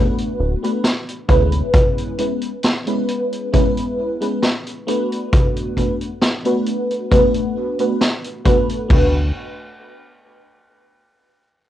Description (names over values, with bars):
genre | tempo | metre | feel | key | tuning
vaporwave | 67 BPM | 4/4 | straight | D lydian | A4 = 440 Hz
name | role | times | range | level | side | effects
FM electric piano with soft pad layer | accompaniment | 0.0-9.3 s | G#3 to B4 | -19 LUFS | equal | phaser, ensemble chorus, tape echo, plate reverb
street-band drum kit | drums | 0.2-9.1 s | crash cymbal, hi-hat, snare drum | -22 LUFS | equal | none
chorused synth bass | bass | 0.4-1.6, 8.9-9.3 s | D1 to D2 | -18 LUFS | equal | none
kick drum | drums | 1.3-9.1 s | none | -16 LUFS | equal | none
room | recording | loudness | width
light reverb | rough home demo mix, cassette tape | -16 LUFS | side -12 dB against mid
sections
0.0-8.9 A section; 8.9-11.7 B section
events
none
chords
0.0 D6; 1.7 C#m7; 4.9 D6